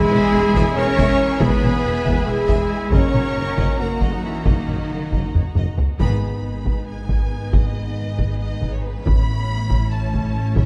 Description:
cinematic, epic orchestral film score; 276 BPM (eighths); 7/8; straight; G# minor; A4 = 436 Hz
rich symphonic violin section; melody; 0.0-10.7 s; B4 to C#6; -36 LUFS; equal
rich symphonic violin section; second line; 0.0-10.7 s; E4 to A#5; -36 LUFS; equal
rich symphonic viola section; accompaniment; 0.0-10.7 s; A3 to C#5; -32 LUFS; equal
dark French horn section; sustained chords; 0.0-10.7 s; B3 to C#5; -30 LUFS; equal
rich symphonic string section; sustained chords; 0.0-6.0 s; A#3 to F#5; -35 LUFS; equal
warm trombone section; sustained chords; 0.0-5.3 s; D#3 to C#4; -32 LUFS; equal
mellow trumpet section; stabs; 0.0-5.3 s; A#3 to A#4; -29 LUFS; equal
warm symphonic cello section; bass; 0.0-10.7 s; G#2 to C#4; -28 LUFS; equal
mellow tuba; bass; 0.1-5.7 s; E1 to F#1; -30 LUFS; equal
rich symphonic double bass section; bass; 0.1-10.7 s; E1 to A1; -28 LUFS; equal
taiko ensemble; drums; 0.1-10.7 s; -23 LUFS; equal
moderate scoring stage reverb, RT60 1.9 s; dark, warm production; -20 LUFS; mono
0.0-6.0 A section; 6.0-10.7 B section
drum fill 5.3-6.0; band accent 6.0-6.4
0.0 E; 2.9 F#6; 6.0 G#m; 9.1 A

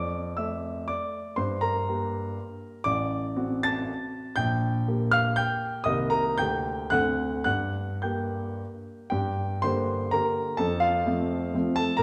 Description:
classical, romantic triple-time dance for piano with dotted rhythms; 101-133 BPM; 3/4; rubato; G minor; A4 = 440 Hz
warm grand piano; solo; 0.0-12.0 s; A1 to A6; -28 LUFS; equal
wet recital hall reverb, RT60 1.7 s; recorded in a church or concert hall; -28 LUFS; mono
0.0-9.1 A section; 9.1-12.0 B section
0.0 Dm/F; 1.4 Gm; 2.8 D7/A; 4.4 Gm/Bb; 5.9 Cm7; 6.4 Gm/D; 6.9 D7; 7.5 Gm; 10.6 F

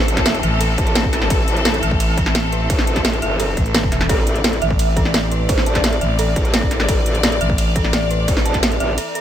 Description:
dark technical drum and bass; 172 BPM; 4/4; straight; A minor; A4 = 440 Hz
clear studio string section; sustained chords; 0.0-9.2 s; E3 to D5; -23 LUFS; left 3 dB; sidechain pumping
dark detuned synth bell; arpeggios; 0.0-9.2 s; A4 to A5; -25 LUFS; right 3 dB; chorus, phaser, sidechain pumping, digital delay
growl bass; bass; 0.0-9.0 s; G1 to A1; -21 LUFS; equal; chorus, overdrive
drum and bass drum kit; drums; 0.0-9.2 s; hi-hat, ride cymbal, snare drum; -21 LUFS; equal
electronic kick drum; drums; 0.2-8.6 s; -20 LUFS; equal; distortion
growling FM bass; bass; 0.4-8.3 s; E1 to A1; -20 LUFS; equal
light reverb; -15 LUFS; side -10 dB against mid
0.0-9.2 A section
break 9.0
0.0 Am

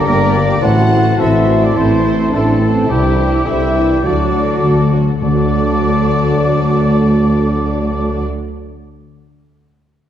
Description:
cinematic, heroic adventure film score; 105 BPM; 4/4; straight; D mixolydian; A4 = 437 Hz
warm symphonic violin section; melody; 0.0-8.3 s; G4 to F#5; -27 LUFS; left 4 dB
mellow clarinet; second line; 0.0-8.3 s; D4 to F#4; -22 LUFS; left 2 dB
silver concert flute; second line; 0.0-8.3 s; C6 to D6; -24 LUFS; left 2 dB
warm oboe; second line; 0.0-8.3 s; G5 to Bb5; -29 LUFS; right 2 dB
warm symphonic violin section; second line; 0.0-8.3 s; A3 to C5; -29 LUFS; left 3 dB
dark symphonic viola section; accompaniment; 0.0-8.3 s; D3 to E4; -23 LUFS; right 1 dB
clear trombone section; sustained chords; 0.0-8.2 s; D3 to Bb3; -24 LUFS; right 3 dB
mellow French horn section; sustained chords; 0.0-8.3 s; C4 to C5; -25 LUFS; left 3 dB
concert harp; arpeggios; 0.0-9.1 s; G2 to D6; -23 LUFS; left 8 dB
mellow trumpet section; stabs; 0.0-8.3 s; G4 to F#5; -22 LUFS; left 1 dB
dark studio cello section; bass; 0.0-8.3 s; D2 to Bb4; -20 LUFS; right 2 dB
dark symphonic double bass section; bass; 0.1-8.3 s; G1 to D2; -18 LUFS; right 1 dB
warm tuba; bass; 0.1-8.3 s; G1 to D2; -19 LUFS; right 1 dB
timpani; percussion; 5.2-9.0 s; D3; -26 LUFS; left 2 dB
moderate scoring stage reverb, RT60 1.7 s; dark, warm production; -11 LUFS; side -10 dB against mid
0.0-5.2 A section; 5.2-7.5 B section
0.0 Gm; 0.6 Am; 2.9 Cadd9; 4.0 D

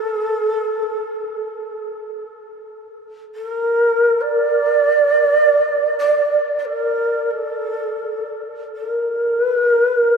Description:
japanese traditional, Japanese chamber music; free time; A4 = 439 Hz
breathy mellow shakuhachi; solo; 0.0-10.2 s; A4 to D5; -16 LUFS; right 1 dB
wet huge ambient reverb, RT60 7.6 s; in a vast, echoing space; -16 LUFS; side -5 dB against mid
0.0-10.2 A section

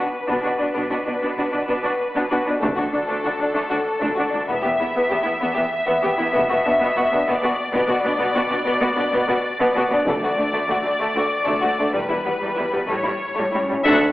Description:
cinematic, epic orchestral film score; 64 BPM (dotted quarters); 6/8; straight; B minor; A4 = 440 Hz
rich symphonic violin section; melody; 0.0-14.1 s; A4 to F#5; -23 LUFS; left 1 dB
warm symphonic violin section; second line; 0.0-14.1 s; G3 to E5; -24 LUFS; left 1 dB
rich studio viola section; accompaniment; 0.0-14.1 s; G3 to A4; -25 LUFS; equal
rich symphonic cello section; bass; 0.0-14.1 s; D2 to B2; -27 LUFS; equal
solo taiko drums; drums; 0.3-14.1 s; -30 LUFS; equal
rich studio double bass section; bass; 0.8-14.0 s; E1 to D2; -33 LUFS; right 1 dB
mellow French horn section; sustained chords; 13.5-14.1 s; C#4 to D4; -20 LUFS; right 1 dB
wet recital hall reverb, RT60 1.4 s; recorded in a church or concert hall, telephone sound; -18 LUFS; side -16 dB against mid
0.0-13.9 A section
build-up 0.0-13.9; band accent 13.9
0.0 Bm; 2.6 D5; 4.5 E5; 6.3 Bm; 10.1 D5; 11.9 Em; 12.9 A7

